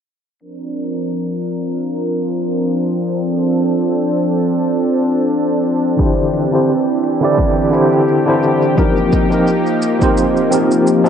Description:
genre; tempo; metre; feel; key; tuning
sunset chillout; 86 BPM; 4/4; swing 55% on 16ths; unclear; A4 = 439 Hz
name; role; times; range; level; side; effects
lush unison pad; sustained chords; 0.4-11.1 s; E3 to Bb4; -15 LUFS; equal; chorus
shaker; drums; 0.4-11.1 s; none; -31 LUFS; right 1 dB; overdrive, low-pass filter on perc, studio ambience
overdriven tine electric piano; accompaniment; 6.0-11.1 s; D3 to D5; -15 LUFS; moving between left 4 dB and right 4 dB; fast tremolo, auto-pan, ping-pong delay
electronic kick drum; drums; 6.0-10.1 s; none; -18 LUFS; equal; overdrive, studio ambience
room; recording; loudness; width
moderate small room reverb, RT60 0.6 s; rough home demo mix, low-pass filter, nothing above 10.3 kHz; -13 LUFS; side -8 dB against mid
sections
0.4-11.1 A section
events
filter sweep on drum 0.4-11.1; filter sweep 0.4-11.1; kick drops out 10.9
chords
0.4 C9sus4; 6.0 D9sus4; 8.8 F9sus4

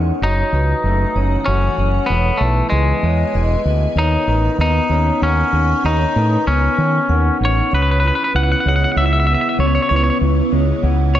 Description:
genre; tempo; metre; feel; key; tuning
post-rock; 96 BPM; 3/4; straight; unclear; A4 = 441 Hz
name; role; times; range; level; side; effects
evolving wavetable pad; sustained chords; 0.0-11.2 s; C#3 to C#6; -27 LUFS; right 1 dB; ensemble chorus, built-in reverb, phaser
electric guitar through a small old amp; arpeggios; 0.0-11.2 s; E2 to C#4; -24 LUFS; left 4 dB; tape echo
vibraphone with medium mallets; arpeggios; 0.0-11.2 s; B4 to F#5; -26 LUFS; right 3 dB; tape echo
growling fingered electric bass; bass; 0.0-11.2 s; E1 to D#3; -16 LUFS; equal; overdrive
twangy electric guitar; melody; 0.2-11.2 s; G#3 to F#5; -19 LUFS; left 1 dB; spring reverb, tape echo
room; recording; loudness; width
light reverb; dark, warm production, nothing above 8.0 kHz; -14 LUFS; side -12 dB against mid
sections
0.0-7.7 A section; 7.7-11.2 B section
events
none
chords
0.2 F#m7; 2.1 E; 4.0 Badd9; 7.7 C#m7

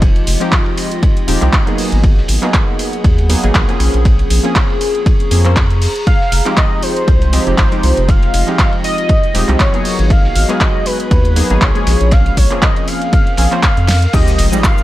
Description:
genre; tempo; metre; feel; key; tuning
deep house; 119 BPM; 4/4; swing 56% on 16ths; F minor; A4 = 440 Hz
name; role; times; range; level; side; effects
warm analog keys; stabs; 0.0-14.8 s; F3 to C5; -19 LUFS; equal; chorus, sidechain pumping, tape echo
round analog bass; bass; 0.0-14.5 s; Eb1 to F2; -14 LUFS; equal; sidechain pumping
deep house drum kit; drums; 0.0-14.8 s; crash cymbal, handclaps, hi-hat, shaker, snare drum; -20 LUFS; equal; overdrive, studio reverb
electronic kick drum; drums; 0.0-14.8 s; none; -13 LUFS; equal; studio reverb
warm soul drum kit; drums; 0.0-14.8 s; hi-hat, ride cymbal, snare drum; -29 LUFS; right 1 dB; sidechain pumping on cymbals, high-pass filter on cymbals, studio reverb, sidechain pumping on hats, high-pass filter on hats, high-pass filter on snare, high-pass filter on room
warbly tape-like pad; texture; 0.0-14.8 s; F4 to Db6; -24 LUFS; left 2 dB; chorus, built-in reverb, phaser, sidechain pumping
warm velvety synth lead; melody; 6.1-14.8 s; Cb5 to F5; -19 LUFS; equal; chorus, cassette tape, tape echo
sub drop; sound effects; 14.1-14.8 s; none; -16 LUFS; equal; none
room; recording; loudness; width
digital ambience; none; -10 LUFS; side -15 dB against mid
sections
0.0-14.1 A section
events
drum fill 13.9; impact 14.1-14.8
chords
0.0 Fm7; 1.8 Abm7; 3.8 Bbm7; 6.1 Fm7; 9.9 Abm7; 11.9 Bbm7; 14.1 Fm7

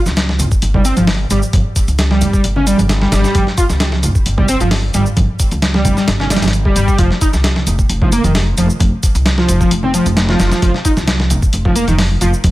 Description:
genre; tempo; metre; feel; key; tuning
breakbeat, breaks; 132 BPM; 4/4; swing 53% on 16ths; unclear; A4 = 441 Hz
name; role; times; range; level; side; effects
upright bass; bass; 0.1-12.5 s; F1 to Db2; -16 LUFS; equal; none
dusty soul sampler-style drum kit; drums; 0.1-12.5 s; hi-hat, kick drum, snare drum; -15 LUFS; equal; studio reverb
shaker; drums; 0.1-12.5 s; none; -27 LUFS; right 2 dB; studio reverb
congas; percussion; 0.3-12.5 s; none; -23 LUFS; right 3 dB; none
overdriven synth lead; riff; 0.7-12.3 s; Eb3 to F4; -17 LUFS; equal; distortion, ensemble chorus, cassette tape, tape echo
room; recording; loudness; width
digital ambience; none; -11 LUFS; side -17 dB against mid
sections
0.0-12.5 A section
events
none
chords
0.0 Db(b5, no3)/G; 7.0 F5

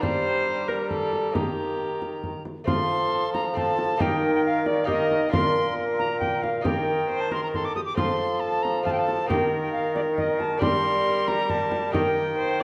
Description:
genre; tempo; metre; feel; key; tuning
classical, renaissance-style consort dance; 136 BPM; 3/4; straight; unclear; A4 = 440 Hz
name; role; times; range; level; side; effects
mellow alto recorder; melody; 0.0-12.6 s; D5 to Eb6; -30 LUFS; equal; none
warm viola; second line; 0.0-12.6 s; G4 to C5; -32 LUFS; equal; none
lute; accompaniment; 0.0-12.6 s; Bb2 to G4; -33 LUFS; equal; none
warm bassoon; bass; 0.0-12.6 s; Bb2 to G3; -31 LUFS; equal; none
frame drum; percussion; 0.0-12.6 s; none; -33 LUFS; equal; none
room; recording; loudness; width
wet recital hall reverb, RT60 1.6 s; dark, warm production; -25 LUFS; mono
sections
0.0-2.7 A section; 2.7-12.6 A section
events
none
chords
0.0 Gm; 1.3 Eb; 2.7 F; 4.0 Eb; 5.3 Bb; 6.7 Eb; 8.0 F; 9.3 Eb; 10.6 Gm; 11.9 Eb

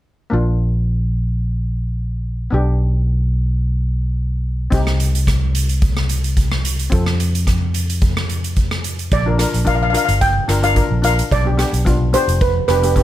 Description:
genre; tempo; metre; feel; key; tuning
calypso; 109 BPM; 4/4; swing 54% on 16ths; Bb major; A4 = 440 Hz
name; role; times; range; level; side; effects
steel pan; accompaniment; 0.3-13.0 s; Bb3 to Bb4; -22 LUFS; left 2 dB; none
fingered electric bass; bass; 0.3-13.0 s; F1 to F2; -18 LUFS; equal; none
street-band drum kit; drums; 4.7-13.0 s; hi-hat, kick drum, rim click; -20 LUFS; equal; none
steel pan; melody; 9.1-13.0 s; B4 to G5; -18 LUFS; right 1 dB; none
room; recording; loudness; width
light reverb; none; -15 LUFS; side -13 dB against mid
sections
0.3-9.1 A section; 9.1-13.0 B section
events
none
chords
0.3 Bb; 2.5 G/B; 4.7 Cm; 6.9 F; 9.1 Bb; 11.3 G7

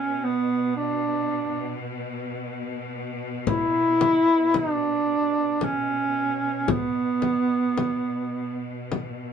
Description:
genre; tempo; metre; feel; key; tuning
caucasian folk, Caucasian lament; 56 BPM; 3/4; rubato; B minor; A4 = 440 Hz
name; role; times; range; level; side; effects
mellow duduk; melody; 0.0-8.9 s; B3 to E4; -22 LUFS; right 1 dB; none
bright studio string section; drone; 0.0-9.3 s; B2; -34 LUFS; left 2 dB; none
frame drum; percussion; 3.5-9.2 s; none; -26 LUFS; left 6 dB; none
room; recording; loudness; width
moderate studio ambience, RT60 0.5 s; band playing live in one room, nothing above 10.5 kHz; -22 LUFS; side -7 dB against mid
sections
0.0-9.3 A section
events
none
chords
none

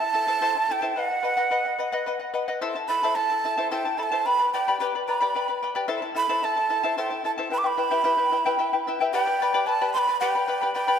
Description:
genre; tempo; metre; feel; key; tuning
andean folk; 73 BPM (dotted quarters); 6/8; straight; unclear; A4 = 438 Hz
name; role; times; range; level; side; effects
breathy large quena; melody; 0.0-11.0 s; F#5 to D6; -24 LUFS; right 3 dB; none
charango; accompaniment; 0.0-11.0 s; E4 to B5; -26 LUFS; left 4 dB; none
room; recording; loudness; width
wet scoring stage reverb, RT60 1.8 s; none; -22 LUFS; side -8 dB against mid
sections
0.0-9.1 A section; 9.1-11.0 B section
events
none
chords
0.0 Am; 1.0 B; 2.6 Am; 4.3 G; 5.9 Am; 7.5 Em; 9.1 G

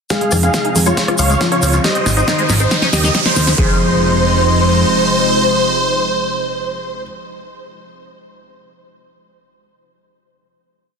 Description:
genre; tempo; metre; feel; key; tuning
uplifting trance; 138 BPM; 4/4; straight; F minor; A4 = 438 Hz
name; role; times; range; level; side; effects
big supersaw lead; melody; 0.1-7.0 s; Eb4 to F5; -17 LUFS; equal; phaser, cassette tape, sidechain pumping, low-pass filter, tape echo
felt-muted upright piano; second line; 0.1-7.0 s; Eb3 to Ab4; -24 LUFS; left 2 dB; tape echo
warm concert grand piano; second line; 0.1-7.0 s; C5 to F5; -28 LUFS; left 1 dB; none
lush unison pad; sustained chords; 0.1-7.0 s; C3 to F4; -21 LUFS; right 1 dB; chorus, sidechain pumping
liquid acid bass; arpeggios; 0.1-3.8 s; Eb3 to F4; -25 LUFS; left 2 dB; lush chorus, sidechain pumping, tape echo
big-room dance drum kit; drums; 0.1-3.6 s; hi-hat, rim click, snare drum; -21 LUFS; right 1 dB; sidechain pumping on hats
electronic kick drum; drums; 0.1-3.7 s; none; -19 LUFS; equal; high-pass filter on kick
tube shaker; percussion; 0.1-3.6 s; none; -24 LUFS; left 4 dB; none
riser and impact; sound effects; 1.2-7.1 s; none; -23 LUFS; right 2 dB; none
fat analog bass; bass; 0.3-4.8 s; Ab1 to F2; -16 LUFS; equal; sidechain pumping
room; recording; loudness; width
light reverb; dense, heavily limited modern master; -12 LUFS; side -6 dB against mid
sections
0.1-3.6 build; 3.6-7.1 final chord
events
build-up 0.1-3.6; drum fill 0.1-3.6; filter sweep on acid bass 0.1-3.6; riser 1.2-3.6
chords
0.1 Fm7; 1.0 Db; 1.8 Ab; 2.7 Eb7; 3.6 Fm7

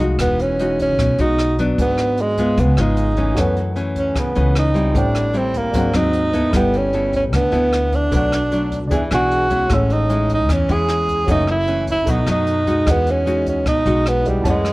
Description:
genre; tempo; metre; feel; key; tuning
bossa nova; 152 BPM; 4/4; straight; E major; A4 = 439 Hz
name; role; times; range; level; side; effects
nylon-string guitar; accompaniment; 0.0-14.7 s; F#2 to A4; -21 LUFS; left 1 dB; none
upright bass; bass; 0.0-14.7 s; E1 to F#2; -21 LUFS; equal; none
jazz brush drum kit; drums; 0.0-14.7 s; hi-hat, kick drum, rim click; -25 LUFS; equal; none
breathy tenor saxophone; melody; 0.2-14.7 s; G3 to G#4; -19 LUFS; right 1 dB; plate reverb
warm baby grand piano; accompaniment; 3.3-14.7 s; A3 to E6; -29 LUFS; right 2 dB; none
room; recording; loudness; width
light reverb; worn, warbling old tape, cassette tape, warbly pitch drift; -15 LUFS; side -20 dB against mid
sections
0.0-14.7 A section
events
none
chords
0.2 Emaj9; 1.8 G#m7b5; 2.6 C#7; 3.4 F#m7; 4.9 Am7; 5.7 G#7#11; 6.5 G69; 8.1 Bm7; 8.9 E7; 9.7 Amaj7; 11.3 F#m7; 12.1 B7; 12.9 Emaj9

